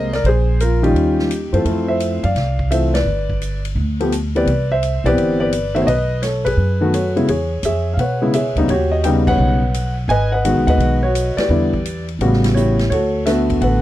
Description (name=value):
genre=jazz piano trio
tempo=171 BPM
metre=4/4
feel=swing 66% on 8ths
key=unclear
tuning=A4 = 440 Hz
part: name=warm concert grand piano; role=melody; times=0.0-13.8 s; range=Db3 to G#5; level=-17 LUFS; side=left 1 dB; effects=none
part: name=upright bass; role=bass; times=0.0-13.8 s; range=G1 to B2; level=-19 LUFS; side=right 1 dB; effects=none
part: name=swinging big-band drum kit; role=drums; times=0.1-13.7 s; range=crash cymbal, hi-hat, kick drum, ride cymbal, snare drum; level=-30 LUFS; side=equal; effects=none
room=little or no reverb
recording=dry, close 1970s-style studio recording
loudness=-15 LUFS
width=side -14 dB against mid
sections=0.0-7.3 A section; 7.3-13.8 B section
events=band accent 2.9, 9.2, 11.3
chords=0.2 Bb7(no3); 1.0 Eb9; 1.7 Fmaj7; 3.1 G; 4.5 Cmaj7; 5.9 B7; 7.3 E6; 8.7 D#7alt; 10.1 G#m7; 11.5 Em7; 12.2 A13; 12.9 D6